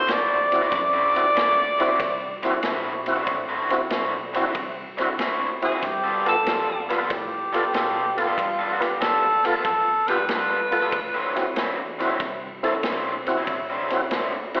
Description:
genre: electric blues shuffle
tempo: 94 BPM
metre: 4/4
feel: swing 68% on 8ths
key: D mixolydian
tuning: A4 = 439 Hz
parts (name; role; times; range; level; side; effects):
- clear tenor saxophone; melody; 0.0-11.5 s; F4 to D5; -22 LUFS; equal; plate reverb
- vintage muted fingered electric bass; bass; 0.0-14.6 s; A1 to B2; -43 LUFS; equal; none
- raw garage guitar; riff; 0.1-14.6 s; D3 to A4; -26 LUFS; equal; overdrive, slapback echo
- vintage drum kit; drums; 0.1-14.6 s; kick drum, ride cymbal, snare drum; -30 LUFS; equal; none
- tonewheel organ; accompaniment; 0.5-14.6 s; B3 to B4; -27 LUFS; equal; overdrive, chorus vibrato, fast rotary speaker, plate reverb, slapback echo
room: moderate club reverb, RT60 0.8 s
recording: live gig heard through the venue's PA, recital hall reverb, telephone sound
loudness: -20 LUFS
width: side -31 dB against mid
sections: 0.0-14.6 A section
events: none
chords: 0.0 D9; 5.8 G9; 10.9 D9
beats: 0.08 | 0.72 1.36 2.00 2.63 | 3.27 3.91 4.55 5.19 | 5.82 6.46 7.10 7.74 | 8.38 9.01 9.65 10.29 | 10.93 11.56 12.20 12.84 | 13.47 14.11

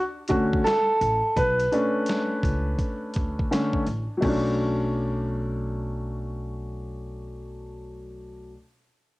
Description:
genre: hip hop, jazz-hop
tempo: 84 BPM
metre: 4/4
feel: swing 65% on 16ths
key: B minor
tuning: A4 = 442 Hz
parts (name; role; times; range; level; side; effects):
- clear upright piano; accompaniment; 0.3-8.6 s; D3 to B4; -25 LUFS; equal; low-pass filter, cassette tape
- upright bass; bass; 0.3-8.5 s; A1 to D2; -30 LUFS; equal; none
- dusty soul sampler-style drum kit; drums; 0.3-4.4 s; crash cymbal, hi-hat, kick drum, snare drum; -30 LUFS; equal; vintage 12-bit sampler grit, cassette tape
room: moderate spring reverb, RT60 1.6 s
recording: home recording on cassette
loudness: -23 LUFS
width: side -20 dB against mid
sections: 0.0-4.2 A section; 4.2-7.1 B section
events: upright piano solo 0.0-4.2; filter sweep on upright piano 0.0-4.2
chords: 0.0 Bm9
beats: 0.65 | 1.36 2.08 2.79 3.51 | 4.22 4.94 5.65 6.37

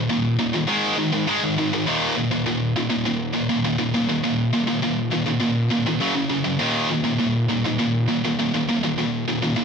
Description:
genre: metal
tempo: 101 BPM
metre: 4/4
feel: straight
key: Eb minor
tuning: A4 = 440 Hz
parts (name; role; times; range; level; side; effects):
- heavy high-gain guitar; solo; 0.0-9.6 s; Eb2 to Ab3; -19 LUFS; equal; distortion
room: little or no reverb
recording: rough home demo mix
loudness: -19 LUFS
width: side -6 dB against mid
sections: 0.0-9.6 A section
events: none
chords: 0.0 Eb5; 0.7 Ab5; 1.9 Eb5; 6.0 Gb5; 6.6 Eb5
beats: 0.08 0.67 1.26 | 1.85 2.45 3.04 3.63 | 4.23 4.82 5.41 6.01 | 6.60 7.19 7.79 8.38 | 8.97 9.57

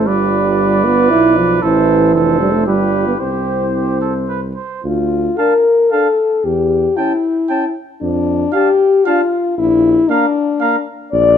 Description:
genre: classical, brass quintet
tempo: 115 BPM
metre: 3/4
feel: rubato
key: C major, D minor from 4.8 s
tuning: A4 = 439 Hz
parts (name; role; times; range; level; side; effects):
- mellow cornet; melody; 0.0-10.8 s; B4 to Bb5; -22 LUFS; left 8 dB; none
- clear trumpet; second line; 0.0-10.8 s; G4 to G5; -21 LUFS; right 9 dB; none
- dark trombone; accompaniment; 0.0-10.8 s; E3 to E4; -16 LUFS; right 4 dB; none
- mellow French horn; accompaniment; 0.0-11.4 s; D4 to D5; -15 LUFS; left 4 dB; none
- warm tuba; bass; 0.0-11.4 s; F1 to F2; -20 LUFS; right 4 dB; none
room: moderate large studio reverb, RT60 1.4 s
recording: dark, warm production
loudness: -12 LUFS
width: side -8 dB against mid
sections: 0.0-4.8 A section; 4.8-11.4 B section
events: none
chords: 0.1 G7; 1.6 Am; 2.1 Dm7/F; 2.7 G7; 3.2 C; 4.8 Dm; 6.4 A7/E; 8.0 Dm/F; 9.6 Bb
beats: | 0.07 0.59 1.11 | 1.63 2.15 2.67 | 3.20 3.75 4.29 | 4.84 5.38 5.91 | 6.44 6.97 7.50 | 8.02 8.54 9.06 | 9.58 10.10 10.61 | 11.12

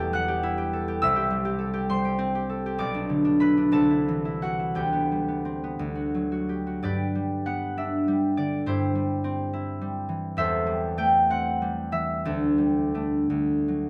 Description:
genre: classical, solo harp piece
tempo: 51-71 BPM (dotted quarters)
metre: 6/8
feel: rubato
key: G major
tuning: A4 = 440 Hz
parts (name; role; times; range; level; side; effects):
- concert harp; solo; 0.0-13.9 s; E1 to G6; -26 LUFS; equal; none
room: light reverb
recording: close, detailed microphones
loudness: -26 LUFS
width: mono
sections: 0.0-6.8 A section; 6.8-13.9 B section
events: none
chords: 0.0 Em; 1.0 C; 2.8 G/B; 3.7 Am/C; 4.8 G/D; 5.8 D; 6.8 G; 8.7 C/G; 10.4 Am7/E; 12.2 Dsus4; 13.3 D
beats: 0.14 | 1.02 1.89 | 2.79 3.72 | 4.76 5.79 | 6.82 7.77 | 8.66 9.53 | 10.38 11.31 | 12.25 13.29

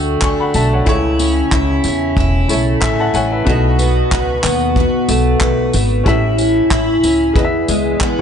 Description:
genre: acoustic pop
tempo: 92 BPM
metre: 4/4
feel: swing 55% on 16ths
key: A major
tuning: A4 = 438 Hz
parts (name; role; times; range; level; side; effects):
- clear upright piano; accompaniment; 0.0-8.2 s; B3 to C#6; -21 LUFS; left 3 dB; none
- picked steel-string acoustic guitar; accompaniment; 0.0-8.2 s; E2 to F#4; -16 LUFS; equal; double-tracked left and right
- upright bass; bass; 0.0-8.2 s; E1 to E2; -18 LUFS; equal; none
- unplugged drum kit; drums; 0.2-8.2 s; handclaps, kick drum, tambourine; -19 LUFS; equal; none
room: small room ambience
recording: nothing above 10.3 kHz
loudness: -12 LUFS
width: side -8 dB against mid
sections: 0.0-8.2 A section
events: upright piano fill 2.5-3.5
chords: 0.0 D; 0.9 A/C#; 3.5 B7; 6.1 A7; 7.4 E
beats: 0.22 | 0.87 1.52 2.17 2.82 | 3.47 4.11 4.76 5.41 | 6.06 6.71 7.36 8.01

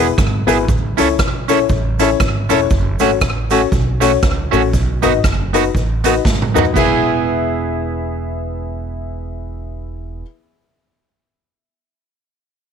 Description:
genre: ska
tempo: 118 BPM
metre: 4/4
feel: swing 59% on 8ths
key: E major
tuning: A4 = 440 Hz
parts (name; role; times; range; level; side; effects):
- clean electric guitar; accompaniment; 0.0-10.3 s; A3 to A4; -20 LUFS; right 14 dB; none
- dark upright piano; stabs; 0.0-10.2 s; B3 to E5; -18 LUFS; left 12 dB; none
- upright bass; bass; 0.0-10.2 s; E1 to D#2; -21 LUFS; right 1 dB; none
- street-band drum kit; drums; 0.2-6.9 s; crash cymbal, hi-hat, kick drum, rim click, snare drum, toms; -18 LUFS; right 1 dB; slapback echo
- cabasa; percussion; 0.2-7.0 s; none; -34 LUFS; right 19 dB; slapback echo
room: light reverb, studio ambience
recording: 1960s-style stereo with parts hard left and right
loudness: -13 LUFS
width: side -7 dB against mid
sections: 0.0-6.8 A section; 6.8-10.8 B section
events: drum fill 6.3-6.8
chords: 0.0 E; 0.7 A; 2.7 F#m; 4.7 B; 6.8 E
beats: 0.18 | 0.68 1.19 1.70 2.20 | 2.71 3.21 3.72 4.23 | 4.73 5.24 5.75 6.25 | 6.76 7.26 7.77 8.28 | 8.79 9.29 9.80

